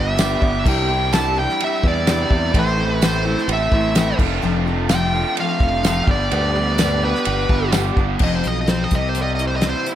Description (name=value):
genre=folk rock and heartland rock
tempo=127 BPM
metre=4/4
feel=straight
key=C major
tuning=A4 = 436 Hz
part: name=dark smooth lead guitar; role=melody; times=0.0-9.9 s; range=B4 to A5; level=-22 LUFS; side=equal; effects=overdrive, plate reverb
part: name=picked steel-string acoustic guitar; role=accompaniment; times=0.0-9.9 s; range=G2 to C5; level=-25 LUFS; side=left 3 dB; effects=none
part: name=raw garage guitar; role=riff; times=0.0-9.9 s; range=F2 to G4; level=-24 LUFS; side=right 2 dB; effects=overdrive, spring reverb
part: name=modern bright fingered electric bass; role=bass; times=0.0-9.7 s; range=F1 to E2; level=-22 LUFS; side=equal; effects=none
part: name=damped 70s drum kit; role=drums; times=0.2-9.9 s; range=crash cymbal, hi-hat, kick drum, ride cymbal, snare drum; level=-21 LUFS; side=equal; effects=none
part: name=tambourine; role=percussion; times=0.2-7.8 s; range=none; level=-32 LUFS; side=right 13 dB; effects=none
room=light reverb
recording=none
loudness=-16 LUFS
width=side -11 dB against mid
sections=0.0-8.2 A section; 8.2-9.9 B section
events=lead electric guitar solo 8.2-9.9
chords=0.0 G; 0.7 Cadd9; 2.5 Am; 4.2 F6; 6.1 G; 8.2 F; 8.9 C